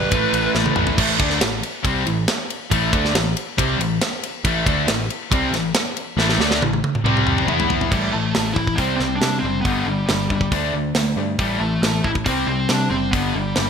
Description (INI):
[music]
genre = hard rock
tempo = 138 BPM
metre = 4/4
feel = straight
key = A minor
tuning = A4 = 440 Hz
[part]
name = lead guitar through a small cranked amp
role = melody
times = 0.0-0.5, 7.9-13.7 s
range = G3 to B4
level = -24 LUFS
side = equal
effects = overdrive, ping-pong delay
[part]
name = distorted electric guitar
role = riff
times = 0.0-13.7 s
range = G2 to E4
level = -24 LUFS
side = left 12 dB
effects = overdrive
[part]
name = overdriven semi-hollow guitar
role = riff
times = 0.0-13.7 s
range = G2 to E4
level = -26 LUFS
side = right 10 dB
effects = lush chorus
[part]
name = sludgy distorted guitar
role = riff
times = 0.0-7.9 s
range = G2 to E4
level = -26 LUFS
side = equal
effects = overdrive
[part]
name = picked electric bass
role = bass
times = 0.0-13.7 s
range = F#1 to C3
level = -25 LUFS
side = equal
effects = none
[part]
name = tight metal drum kit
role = drums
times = 0.1-13.7 s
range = crash cymbal, hi-hat, kick drum, ride cymbal, snare drum, toms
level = -22 LUFS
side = right 1 dB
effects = gated reverb
[sound]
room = light reverb, small room ambience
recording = bright 1980s-style digital production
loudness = -17 LUFS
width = side -7 dB against mid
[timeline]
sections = 1.0-7.9 A section; 7.9-13.7 B section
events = drum fill 0.5-1.0, 6.2-7.9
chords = 0.1 A5; 1.0 Am; 7.0 C5; 7.5 E5; 7.9 A5; 8.8 C5; 9.6 G5; 10.5 D5; 11.4 A5; 12.3 C5; 13.1 G5